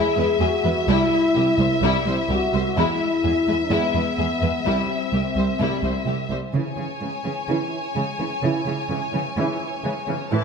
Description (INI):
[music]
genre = cinematic, hybrid orchestral and electronic film score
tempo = 127 BPM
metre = 4/4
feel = straight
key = unclear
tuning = A4 = 439 Hz
[part]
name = dark symphonic violin section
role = melody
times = 0.0-6.3 s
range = E5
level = -26 LUFS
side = left 4 dB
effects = low-pass filter
[part]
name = warm symphonic violin section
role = second line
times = 0.0-10.4 s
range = E4 to A5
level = -28 LUFS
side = left 3 dB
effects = none
[part]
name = warm symphonic viola section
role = accompaniment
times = 0.0-10.4 s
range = E3 to E4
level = -28 LUFS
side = right 1 dB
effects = low-pass filter
[part]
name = warm French horn section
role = sustained chords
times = 0.0-6.3 s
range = B3 to G#4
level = -23 LUFS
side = left 3 dB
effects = low-pass filter
[part]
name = warm symphonic cello section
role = bass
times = 0.2-10.4 s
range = C2 to C#3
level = -24 LUFS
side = right 4 dB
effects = none
[sound]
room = wet scoring stage reverb, RT60 1.6 s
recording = none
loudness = -20 LUFS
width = side -6 dB against mid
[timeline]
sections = 0.0-6.5 A section; 6.5-10.4 B section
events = filter sweep 6.5-10.4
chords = 0.0 E; 0.9 C; 2.8 E; 4.7 C; 6.5 C#m